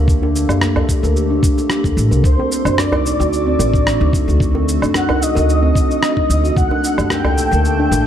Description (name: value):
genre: organic downtempo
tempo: 111 BPM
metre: 4/4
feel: swing 53% on 16ths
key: D phrygian dominant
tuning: A4 = 440 Hz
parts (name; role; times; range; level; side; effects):
- warbly tape-like pad; sustained chords; 0.0-8.1 s; A3 to A5; -24 LUFS; left 1 dB; chorus, built-in reverb, sidechain pumping
- steel tongue drum; arpeggios; 0.0-8.0 s; C4 to Bb4; -20 LUFS; right 1 dB; low-pass filter, tape echo
- upright bass; bass; 0.0-8.1 s; A1 to F#2; -17 LUFS; equal; tube saturation, sidechain pumping
- electronic kick drum; drums; 0.1-6.7 s; none; -17 LUFS; equal; studio reverb
- electronic shaker, woodblock and rim click; drums; 0.1-8.0 s; none; -23 LUFS; right 1 dB; studio reverb
- djembe; percussion; 0.2-8.0 s; none; -24 LUFS; equal; none
- breathy flute-like synth lead; melody; 2.2-8.1 s; C5 to G5; -20 LUFS; left 1 dB; ensemble chorus, tape echo
room: light reverb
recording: dark, warm production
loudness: -13 LUFS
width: side -10 dB against mid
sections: 0.0-8.1 A section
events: none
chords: 0.0 Gmadd9; 2.2 D7b9; 6.6 Gmadd9